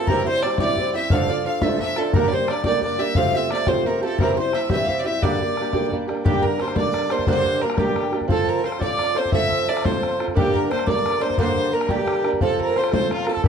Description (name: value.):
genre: celtic folk, Celtic jig.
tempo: 117 BPM (dotted quarters).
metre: 6/8.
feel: straight.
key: G dorian.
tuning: A4 = 441 Hz.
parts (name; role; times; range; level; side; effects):
rich fiddle; melody; 0.0-13.5 s; F4 to F5; -24 LUFS; equal; none.
accordion; second line; 0.0-13.5 s; F4 to F5; -30 LUFS; left 3 dB; none.
mandolin; second line; 0.0-13.5 s; F4 to F5; -31 LUFS; right 2 dB; none.
fingerpicked swing-style acoustic guitar; accompaniment; 0.0-13.5 s; G2 to Bb4; -23 LUFS; right 3 dB; none.
bodhran; percussion; 0.1-13.5 s; none; -24 LUFS; left 2 dB; none.
room: moderate studio reverb, RT60 0.7 s.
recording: dark, warm production.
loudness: -18 LUFS.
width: side -7 dB against mid.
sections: 0.0-6.2 A section; 6.2-13.5 B section.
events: none.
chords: 0.1 C/G; 1.1 Dm/G; 2.1 Gm; 3.2 F/G; 4.2 C/G; 5.2 Gm; 8.3 F; 10.4 Gm; 12.4 F.